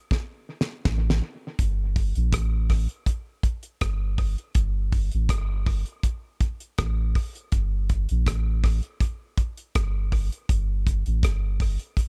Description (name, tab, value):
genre	roots reggae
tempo	81 BPM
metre	4/4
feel	straight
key	G minor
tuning	A4 = 437 Hz
part	damped 70s drum kit	drums	0.1-12.1 s	hi-hat, kick drum, rim click, snare drum	-27 LUFS	equal	none
part	soft dub sub bass	bass	0.9-11.8 s	G1 to Bb1	-26 LUFS	equal	none
room	little or no reverb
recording	echo-heavy mix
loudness	-26 LUFS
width	mono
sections	0.0-1.6 A section; 1.6-12.1 B section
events	drum fill 0.1-1.6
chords	none